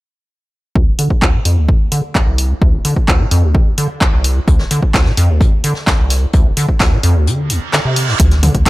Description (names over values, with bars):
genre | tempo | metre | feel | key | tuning
acid house | 129 BPM | 4/4 | straight | D minor | A4 = 440 Hz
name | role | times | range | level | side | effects
acid bass, square | riff | 0.8-8.7 s | D1 to D3 | -15 LUFS | equal | tube saturation, lush chorus, sidechain pumping, tape echo
electronic kick drum | drums | 0.8-8.7 s | none | -13 LUFS | equal | none
punchy analog drum machine | drums | 1.0-8.7 s | handclaps, hi-hat, toms | -18 LUFS | equal | none
vintage brush drum kit | drums | 4.5-8.7 s | hi-hat, snare drum | -26 LUFS | left 2 dB | high-pass filter on hats, high-pass filter on snare, high-pass filter on room
reverse cymbal | sound effects | 7.5-8.2 s | none | -22 LUFS | right 6 dB | none
warm sub bass | bass | 8.2-8.7 s | D2 | -14 LUFS | equal | sidechain pumping
room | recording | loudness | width
digital ambience | none | -11 LUFS | side -19 dB against mid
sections
0.8-8.2 A section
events
filter sweep on acid bass 0.8-8.2; break 7.3-8.2; reverse cymbal 7.5-8.2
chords
none